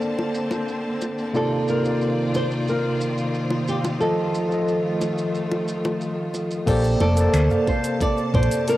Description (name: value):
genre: sunset chillout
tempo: 90 BPM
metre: 4/4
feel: straight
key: Bb major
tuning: A4 = 440 Hz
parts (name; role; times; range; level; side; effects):
- flamenco guitar; melody; 0.0-8.8 s; G4 to F5; -26 LUFS; right 1 dB; cassette tape, analog delay, shimmer reverb
- tine electric piano; accompaniment; 0.0-8.8 s; C3 to A5; -24 LUFS; equal; medium tremolo, auto-pan, cassette tape
- bright studio string section; sustained chords; 0.0-8.8 s; C3 to A5; -30 LUFS; left 1 dB; cassette tape
- smooth R&B drum kit; drums; 0.0-8.8 s; crash cymbal, finger snaps, hi-hat, shaker, toms; -32 LUFS; equal; low-pass filter on perc, cassette tape, low-pass filter on hats, low-pass filter on cymbals, low-pass filter on snare, low-pass filter on toms, low-pass filter on room
- bongos; percussion; 0.2-6.5 s; none; -30 LUFS; left 2 dB; none
- Celtic harp; arpeggios; 6.7-8.8 s; A4 to F5; -28 LUFS; equal; cassette tape, analog delay
- hollow-body short-scale fingered electric bass; bass; 6.7-8.5 s; F1 to D2; -19 LUFS; equal; none
- electronic kick drum; drums; 6.7-8.5 s; none; -24 LUFS; equal; cassette tape
room: moderate spring reverb, RT60 2.0 s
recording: home recording on cassette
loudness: -20 LUFS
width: side -15 dB against mid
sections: 0.0-6.7 A section; 6.7-8.8 B section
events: filter sweep on tine electric piano 0.0-6.7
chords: 0.0 Bbmaj9; 1.3 Cm11; 4.0 F7; 6.7 Bbmaj9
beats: 0.01 0.68 | 1.34 2.01 2.68 3.35 | 4.01 4.68 5.34 6.01 | 6.68 7.34 8.01 8.68